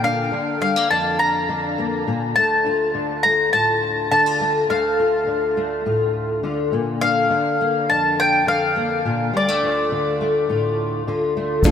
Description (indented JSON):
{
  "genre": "indie folk with a building arrangement",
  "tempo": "103 BPM",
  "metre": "4/4",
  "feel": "straight",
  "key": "D minor",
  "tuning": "A4 = 440 Hz",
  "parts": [
    { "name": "mandolin", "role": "melody", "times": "0.0-11.7 s", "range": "D5 to Bb5", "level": "-24 LUFS", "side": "equal", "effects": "analog delay" },
    { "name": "fingerpicked steel-string acoustic guitar", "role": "accompaniment", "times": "0.0-11.7 s", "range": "D2 to F4", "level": "-25 LUFS", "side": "left 3 dB", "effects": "ensemble chorus" },
    { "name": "bright upright piano", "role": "accompaniment", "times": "11.6-11.7 s", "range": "none", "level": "barely audible", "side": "none", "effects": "none" },
    { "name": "picked steel-string acoustic guitar", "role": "accompaniment", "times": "11.6-11.7 s", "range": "D3 to A4", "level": "-20 LUFS", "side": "left 8 dB", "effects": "none" },
    { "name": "mellow tonewheel organ", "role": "sustained chords", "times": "11.6-11.7 s", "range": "D3 to A4", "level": "-16 LUFS", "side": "right 4 dB", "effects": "slow rotary speaker, chorus vibrato" },
    { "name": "upright bass", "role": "bass", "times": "11.7 s", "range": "D2", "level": "-20 LUFS", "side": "equal", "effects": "none" },
    { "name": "soft-mallet drum kit", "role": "drums", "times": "11.7 s", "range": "kick drum, ride cymbal", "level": "-14 LUFS", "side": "equal", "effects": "none" },
    { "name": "egg shaker", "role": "percussion", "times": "11.7 s", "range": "none", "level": "-40 LUFS", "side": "right 15 dB", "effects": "none" }
  ],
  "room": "light reverb, small room ambience",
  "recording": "none",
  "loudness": "-17 LUFS",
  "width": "side -8 dB against mid",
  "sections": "0.0-11.7 A section",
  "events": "none",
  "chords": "0.0 Bb; 2.4 Dm; 6.7 Bb; 9.3 Dm",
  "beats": "| 0.04 0.62 1.20 1.78 | 2.36 2.94 3.53 4.11 | 4.69 5.27 5.85 6.43 | 7.01 7.60 8.18 8.76 | 9.34 9.92 10.50 11.08 | 11.65"
}